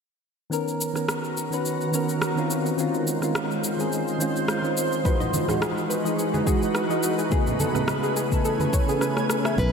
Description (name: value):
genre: sunset chillout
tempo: 106 BPM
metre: 4/4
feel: swing 54% on 16ths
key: B major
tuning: A4 = 440 Hz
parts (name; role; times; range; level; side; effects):
- soft electric-piano-like synth keys; accompaniment; 0.5-9.7 s; C#3 to B4; -26 LUFS; moving between left 4 dB and right 4 dB; chorus, auto-pan, low-pass filter, ping-pong delay
- shimmering ambient pad; sustained chords; 1.1-9.7 s; C#3 to A#5; -27 LUFS; right 1 dB; chorus, built-in reverb, vintage 12-bit sampler grit
- electronic cabasa and rim click; drums; 0.5-9.7 s; none; -31 LUFS; left 1 dB; none
- soft round pluck; arpeggios; 5.0-9.6 s; G#4 to E5; -30 LUFS; left 1 dB; chorus, ping-pong delay
- electronic kick drum; drums; 5.1-9.7 s; none; -24 LUFS; left 1 dB; none
- congas; percussion; 5.2-8.7 s; none; -31 LUFS; right 2 dB; none
- warm soprano saxophone; melody; 9.6-9.7 s; B4; -26 LUFS; equal; none
- fretless electric bass; bass; 9.6-9.7 s; B1; -22 LUFS; left 1 dB; tube saturation
room: wet lush hall reverb, RT60 2.6 s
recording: dreamy mix soaked in reverb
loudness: -22 LUFS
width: side -6 dB against mid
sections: 0.5-9.6 A section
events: drum fill 9.0-9.6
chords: 0.5 Bmaj9; 2.5 C#maj9; 5.1 Emaj9; 7.3 Amaj9